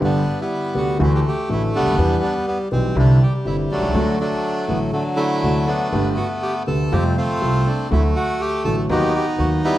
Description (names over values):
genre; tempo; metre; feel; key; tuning
tango; 122 BPM; 4/4; rubato; unclear; A4 = 438 Hz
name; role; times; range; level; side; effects
bandoneon; melody; 0.0-9.8 s; D3 to A4; -21 LUFS; equal; none
dark concert grand piano; accompaniment; 0.0-9.6 s; G1 to G4; -20 LUFS; equal; none
upright bass; bass; 0.0-9.6 s; G1 to F2; -24 LUFS; equal; none
room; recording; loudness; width
wet large studio reverb, RT60 1.2 s; band playing live in one room, vinyl crackle; -17 LUFS; side -14 dB against mid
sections
0.0-9.8 A section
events
none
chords
0.0 G; 1.0 Dadd9; 2.0 Em; 3.0 Cadd9; 3.9 D; 5.9 Gadd9; 6.9 Fadd9; 7.9 D; 8.9 B/D#